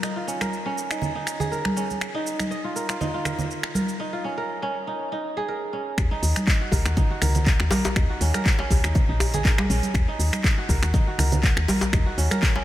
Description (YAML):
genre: afro house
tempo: 121 BPM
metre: 4/4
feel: swing 54% on 16ths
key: Eb minor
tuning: A4 = 440 Hz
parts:
  - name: kora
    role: arpeggios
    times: 0.0-12.6 s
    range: Db4 to Eb5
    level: -29 LUFS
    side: right 2 dB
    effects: vintage 12-bit sampler grit, sidechain pumping, analog delay
  - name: afro-pop drum kit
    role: drums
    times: 0.0-12.5 s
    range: finger snaps, handclaps, hi-hat, shaker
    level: -28 LUFS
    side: equal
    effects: small room ambience
  - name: congas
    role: percussion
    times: 0.4-12.4 s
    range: none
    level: -29 LUFS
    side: right 1 dB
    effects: none
  - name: woody FM bass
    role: bass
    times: 6.0-12.3 s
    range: Bb1 to Eb2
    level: -23 LUFS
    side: equal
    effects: sidechain pumping
  - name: electronic kick drum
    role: drums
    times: 6.0-12.5 s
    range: none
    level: -21 LUFS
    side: equal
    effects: small room ambience
  - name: djembe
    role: percussion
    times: 6.0-12.6 s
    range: none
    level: -30 LUFS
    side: left 2 dB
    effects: none
room: light reverb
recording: none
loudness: -21 LUFS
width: side -14 dB against mid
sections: 0.0-6.0 A section; 6.0-12.6 B section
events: break 4.0-6.0; drop 6.0-12.6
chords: 0.0 Bbm; 6.0 Ebm